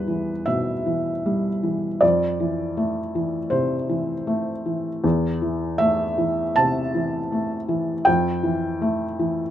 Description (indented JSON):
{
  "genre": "neoclassical minimalist piano",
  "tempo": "79 BPM",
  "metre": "4/4",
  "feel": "rubato",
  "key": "A minor",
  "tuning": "A4 = 440 Hz",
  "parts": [
    { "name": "felt-muted upright piano", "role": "solo", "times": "0.0-9.5 s", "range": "E2 to A5", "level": "-20 LUFS", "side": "equal", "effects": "none" }
  ],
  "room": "light reverb",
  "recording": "rough home demo mix",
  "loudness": "-20 LUFS",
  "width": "side -11 dB against mid",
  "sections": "0.0-9.5 A section",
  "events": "none",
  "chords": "0.0 Em; 2.0 Fmaj7; 5.0 Am/E; 8.1 Fmaj7"
}